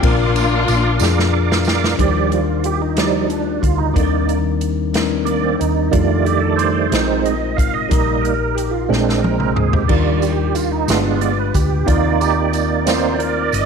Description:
slow gospel; 61 BPM (dotted quarters); 6/8; straight; Eb major; A4 = 441 Hz
warm studio string section; melody; 0.0-1.3 s; Bb3 to F4; -21 LUFS; left 3 dB
bell-like tine electric piano; accompaniment; 0.0-13.7 s; G2 to D5; -21 LUFS; left 14 dB; fast stereo tremolo
bright tonewheel organ; sustained chords; 0.0-13.7 s; Eb3 to D6; -19 LUFS; right 11 dB; slow rotary speaker, chorus vibrato
hollow-body short-scale fingered electric bass; bass; 0.0-13.7 s; G1 to F2; -20 LUFS; equal
swinging big-band drum kit; drums; 0.0-13.7 s; crash cymbal, hi-hat, kick drum, ride cymbal, snare drum, toms; -22 LUFS; equal
tambourine; percussion; 0.4-2.0, 10.2-13.7 s; -32 LUFS; right 13 dB
light reverb, studio reverb; 1960s-style stereo with parts hard left and right; -14 LUFS; side -6 dB against mid
0.0-2.0 A section; 2.0-13.7 B section
drum fill 1.0-2.0, 8.9-9.9; tonewheel organ solo 2.0-13.7
0.0 Bb; 2.0 Ebmaj9; 4.0 Cm9/Eb; 5.9 F13; 6.9 Bb9sus4; 7.9 Eb/Bb; 8.9 Bb7; 9.9 Ebmaj9; 10.9 G7b9; 11.9 Cm11/Eb
| 0.03 1.01 | 1.99 2.97 | 3.96 4.95 | 5.93 6.92 | 7.91 8.90 | 9.89 10.88 | 11.88 12.87

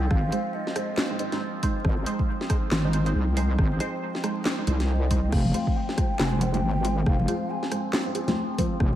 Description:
deep dubstep; 138 BPM; 4/4; swing 60% on 16ths, half-time; A4 = 440 Hz
breathy mellow ney; melody; 0.0-1.4, 4.9-7.9 s; Eb5 to C6; -35 LUFS; left 1 dB; dub echo
overtone-sweeping drone; sustained chords; 0.0-9.0 s; F3 to C4; -34 LUFS; equal; chorus, built-in reverb
wobble bass; bass; 0.0-9.0 s; F1 to C2; -24 LUFS; equal; chorus
electronic kick drum; drums; 0.1-8.9 s; -25 LUFS; equal; overdrive
garage drum kit; drums; 0.1-8.9 s; crash cymbal, handclaps, hi-hat, rim click, snare drum; -31 LUFS; equal
filtered dub chord stab; stabs; 0.3-8.7 s; Ab3 to C5; -32 LUFS; right 3 dB; phaser, lush chorus, dub echo
congas; percussion; 5.5-9.0 s; -30 LUFS; left 3 dB
light reverb, digital ambience; vinyl crackle; -23 LUFS; side -12 dB against mid
0.0-9.0 A section
0.0 Ab; 5.3 Fm
| 0.11 0.54 0.98 1.41 | 1.85 2.28 2.72 3.15 | 3.58 4.02 4.46 4.89 | 5.33 5.76 6.19 6.63 | 7.06 7.50 7.93 8.37 | 8.80

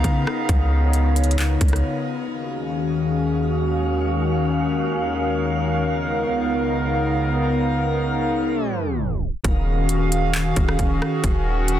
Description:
hip hop, atmospheric cloud-rap; 134 BPM; 4/4; half-time; Eb minor; A4 = 444 Hz
hollow soft pad; sustained chords; 0.0-11.8 s; Db2 to Bb5; -21 LUFS; equal; chorus, low-pass filter
soft 808-style bass; bass; 0.0-1.8, 9.4-11.8 s; Eb1 to Db3; -20 LUFS; equal
trap drum kit; drums; 0.0-1.8, 9.4-11.8 s; handclaps, hi-hat, kick drum, rim click; -26 LUFS; equal
wind-like tuned noise texture; texture; 0.0-9.4 s; Ab3 to F5; -31 LUFS; equal; built-in reverb
light reverb; dense, heavily limited modern master, tape stop; -19 LUFS; side -11 dB against mid
0.0-2.3 A section; 2.3-9.4 B section; 9.4-11.8 A section
break 1.8-2.3; filter sweep on analog synth pad 2.3-9.4; tape stop 8.6-9.4
0.0 Db13; 2.3 Ebm11; 5.9 Db13; 9.4 Ebm11
0.04 | 0.49 0.94 1.39 1.83 | 2.28 2.73 3.18 3.62 | 4.07 4.52 4.97 5.42 | 5.86 6.31 6.76 7.21 | 7.65 8.10 8.55 9.00 | 9.45 9.89 10.34 10.79 | 11.24 11.68

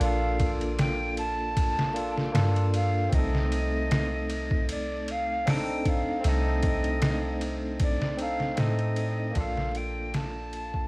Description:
trip hop; 77 BPM; 4/4; swing 54% on 16ths; C dorian; A4 = 439 Hz
silver concert flute; melody; 0.0-10.9 s; D5 to A5; -32 LUFS; equal; vintage 12-bit sampler grit, cassette tape, tape echo
barky tine electric piano; accompaniment; 0.0-10.9 s; A3 to A4; -31 LUFS; equal; harmonic tremolo, cassette tape, tape echo
soft 808-style bass; bass; 0.0-10.9 s; Bb1 to A2; -30 LUFS; equal
trip hop sampler-style drum kit; drums; 0.0-10.9 s; hi-hat, kick drum, ride cymbal, snare drum; -30 LUFS; equal; cassette tape
light reverb, digital ambience; home recording on cassette, vinyl crackle; -25 LUFS; side -26 dB against mid
0.0-10.9 A section
fade-out 7.3-10.9
0.0 Bbmaj7; 3.1 Cm69; 9.4 Bbmaj7
| 0.01 0.79 1.57 2.35 | 3.13 3.91 4.69 5.47 | 6.25 7.03 7.80 8.58 | 9.36 10.14

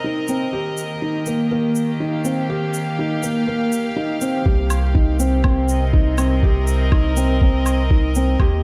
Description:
piano and strings electronica; 122 BPM; 4/4; straight; C minor; A4 = 442 Hz
rich chamber string section; sustained chords; 0.0-8.6 s; C3 to F5; -27 LUFS; equal; sidechain pumping
felt-muted upright piano; riff; 0.0-8.6 s; Bb3 to G4; -24 LUFS; equal; tape echo
round analog bass; bass; 0.0-8.6 s; C2 to Eb2; -22 LUFS; equal; sidechain pumping, high-pass filter
shaker and woodblock; drums; 0.3-8.5 s; -33 LUFS; equal; overdrive
electronic kick drum; drums; 4.5-8.5 s; -18 LUFS; equal; overdrive
light reverb; -19 LUFS; mono
0.0-4.5 A section; 4.5-8.6 B section
build-up 0.0-4.5; drop 4.5-8.6
0.0 Cm7; 0.5 Ebadd9; 4.5 Cm7
0.03 | 0.53 1.02 1.51 2.00 | 2.49 2.98 3.48 3.97 | 4.46 4.95 5.44 5.93 | 6.43 6.92 7.41 7.90 | 8.39

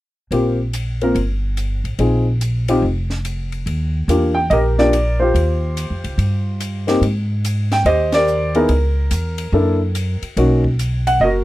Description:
jazz piano trio; 143 BPM; 4/4; swing 66% on 8ths; Eb major; A4 = 440 Hz
dark baby grand piano; melody; 0.3-11.4 s; Bb3 to G5; -17 LUFS; equal
upright bass; bass; 0.3-11.4 s; F1 to Ab2; -18 LUFS; equal
compact cocktail drum kit; drums; 0.3-11.1 s; hi-hat, kick drum, ride cymbal, snare drum; -31 LUFS; left 1 dB
little or no reverb; dry, close 1970s-style studio recording; -16 LUFS; side -16 dB against mid
0.3-3.7 A section; 3.7-11.4 B section
band accent 8.1
0.3 Gm11; 2.0 Bbsus4; 3.7 Ebmaj9; 5.3 Eb69; 7.0 Abmaj9; 8.7 Dbm; 9.5 Gb7alt; 10.4 Bmaj7
| 0.32 0.74 1.16 1.57 | 1.99 2.41 2.83 3.25 | 3.67 4.08 4.50 4.92 | 5.34 5.76 6.18 6.60 | 7.02 7.43 7.85 8.27 | 8.69 9.11 9.53 9.95 | 10.37 10.79 11.21

